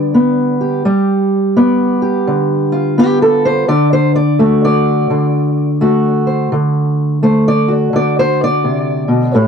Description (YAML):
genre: acoustic country blues, solo or duo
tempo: 85 BPM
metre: 4/4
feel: swing 63% on 8ths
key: D mixolydian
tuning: A4 = 440 Hz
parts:
  - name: fingerpicked steel-string acoustic guitar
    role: solo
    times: 0.0-9.5 s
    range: A2 to D5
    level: -11 LUFS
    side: equal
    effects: none
room: small room ambience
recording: dry, close 1970s-style studio recording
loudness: -11 LUFS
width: side -6 dB against mid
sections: 0.0-9.5 A section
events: steel-string acoustic guitar solo 0.0-9.5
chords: 0.0 G7; 3.7 D7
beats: 0.15 | 0.86 1.57 2.28 2.98 | 3.69 4.40 5.11 5.81 | 6.52 7.23 7.94 8.65 | 9.36